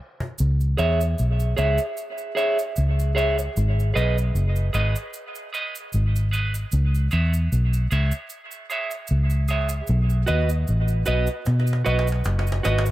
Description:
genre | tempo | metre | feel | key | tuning
dub reggae | 76 BPM | 4/4 | swing 55% on 16ths | C# minor | A4 = 440 Hz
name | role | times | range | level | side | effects
cajon | drums | 0.2-0.4, 11.5-12.9 s | none | -33 LUFS | equal | none
vintage muted fingered electric bass | bass | 0.4-12.9 s | F#1 to B2 | -20 LUFS | equal | none
cabasa | percussion | 0.4-12.9 s | none | -38 LUFS | right 4 dB | high-pass filter on perc
clean electric guitar | accompaniment | 0.8-12.9 s | F#4 to E5 | -26 LUFS | right 2 dB | high-pass filter, dub echo
room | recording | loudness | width
little or no reverb | echo-heavy mix | -20 LUFS | side -16 dB against mid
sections
0.4-12.9 A section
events
break 0.0-0.4; filter sweep 0.4-9.9; drum fill 11.5-12.9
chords
0.4 C#m; 3.6 G#m; 6.7 C#m; 9.9 B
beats
| 0.39 1.18 1.97 2.76 | 3.55 4.34 5.13 5.93 | 6.72 7.51 8.30 9.09 | 9.88 10.67 11.46 12.26

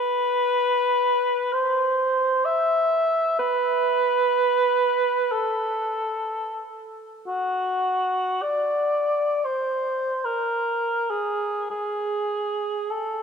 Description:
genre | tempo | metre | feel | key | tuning
classical, free, expressive piece for unaccompanied cor anglais | free time | none | none | unclear | A4 = 440 Hz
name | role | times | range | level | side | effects
mellow cor anglais | solo | 0.0-13.2 s | F#4 to E5 | -21 LUFS | equal | none
room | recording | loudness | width
wet church reverb, RT60 3.2 s | none | -21 LUFS | side -6 dB against mid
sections
0.0-13.2 A section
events
none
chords
none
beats
free time

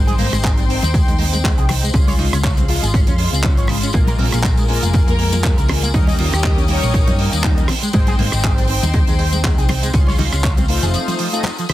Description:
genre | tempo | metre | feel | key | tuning
nu-disco, nu disco | 120 BPM | 4/4 | swing 56% on 16ths | unclear | A4 = 440 Hz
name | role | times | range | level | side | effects
mellow synth brass | accompaniment | 0.0-11.5 s | G3 to C6 | -24 LUFS | left 1 dB | chorus, sidechain pumping, tape echo
dark studio string section | sustained chords | 0.0-11.7 s | A4 to Eb6 | -29 LUFS | left 6 dB | sidechain pumping
hollow-body short-scale fingered electric bass | bass | 0.0-10.9 s | F1 to G2 | -19 LUFS | equal | none
electric guitar with an envelope filter | riff | 0.1-11.7 s | F2 to Eb5 | -27 LUFS | right 3 dB | lush chorus
damped 70s drum kit | drums | 0.1-11.7 s | handclaps, hi-hat, rim click, tambourine | -23 LUFS | right 1 dB | soft clipping on snare
congas | percussion | 0.1-11.7 s | none | -26 LUFS | left 4 dB | none
electronic kick drum | drums | 0.4-10.6 s | none | -17 LUFS | equal | overdrive
rich symphonic violin section | melody | 5.1-7.1 s | G4 to Db5 | -28 LUFS | left 1 dB | tape echo
room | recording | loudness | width
little or no reverb | dense, heavily limited modern master | -14 LUFS | side -15 dB against mid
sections
0.0-11.7 A section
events
break 10.9-11.7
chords
0.0 Abmaj7; 1.9 Dbmaj7; 3.9 Bbm7; 5.9 Eb7; 7.7 Abmaj7; 9.9 Dbmaj7; 10.9 F7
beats
0.44 0.94 1.44 | 1.94 2.44 2.94 3.44 | 3.94 4.44 4.94 5.44 | 5.94 6.44 6.94 7.44 | 7.94 8.44 8.94 9.44 | 9.94 10.44 10.94 11.44

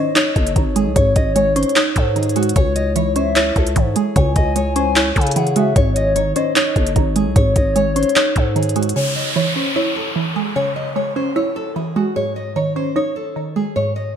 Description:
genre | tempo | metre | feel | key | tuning
hip hop, trap | 150 BPM | 4/4 | half-time | C# harmonic minor | A4 = 440 Hz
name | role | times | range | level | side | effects
nylon-string guitar | melody | 0.0-14.1 s | F#4 to D#5 | -22 LUFS | left 1 dB | digital delay
gliding portamento lead | second line | 0.0-8.5 s | C#5 to G#5 | -23 LUFS | left 4 dB | chorus, digital delay
glassy wavetable pluck | accompaniment | 0.0-14.2 s | G#2 to E4 | -21 LUFS | right 2 dB | chorus
glass harmonica | sustained chords | 0.0-8.9 s | D#4 to C#5 | -28 LUFS | right 3 dB | none
trap drum kit | drums | 0.2-9.0 s | handclaps, hi-hat, kick drum | -18 LUFS | equal | gated reverb
growling 808-style bass | bass | 0.4-8.9 s | F#1 to C#3 | -21 LUFS | equal | none
downlifter | sound effects | 9.0-12.2 s | none | -25 LUFS | equal | none
room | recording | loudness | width
moderate plate reverb, RT60 1.7 s | bright 1980s-style digital production | -15 LUFS | side -8 dB against mid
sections
0.0-9.0 A section; 9.0-14.2 B section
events
none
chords
0.0 G#sus4; 2.6 C#m; 5.8 G#sus4; 9.0 C#m; 12.2 G#sus4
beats
0.16 0.56 | 0.96 1.36 1.76 2.16 | 2.56 2.96 3.36 3.76 | 4.16 4.56 4.96 5.36 | 5.76 6.16 6.56 6.96 | 7.36 7.76 8.16 8.56 | 8.96 9.36 9.76 10.16 | 10.56 10.96 11.36 11.76 | 12.16 12.56 12.96 13.36 | 13.76 14.16

